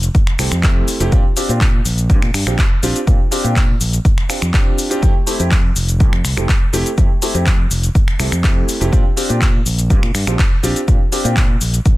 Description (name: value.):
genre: filtered disco house.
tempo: 123 BPM.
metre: 4/4.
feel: straight.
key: unclear.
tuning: A4 = 440 Hz.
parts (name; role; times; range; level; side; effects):
overdriven fingered electric bass; bass; 0.0-12.0 s; F1 to Bb2; -18 LUFS; equal; tube saturation, sidechain pumping.
punchy analog drum machine; drums; 0.0-12.0 s; finger snaps, handclaps, hi-hat, shaker; -22 LUFS; left 1 dB; sidechain pumping on hats, sidechain pumping on cymbals, sidechain pumping on perc.
electronic kick drum; drums; 0.1-12.0 s; none; -14 LUFS; equal; none.
warm grand piano; accompaniment; 0.4-11.4 s; A3 to G4; -22 LUFS; right 1 dB; phaser, sidechain pumping.
room: digital ambience.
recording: dense, heavily limited modern master.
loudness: -13 LUFS.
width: side -18 dB against mid.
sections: 0.0-12.0 A section.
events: none.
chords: 0.0 Fmaj9; 1.1 Bb69; 5.0 Fmaj9; 8.9 Bb69.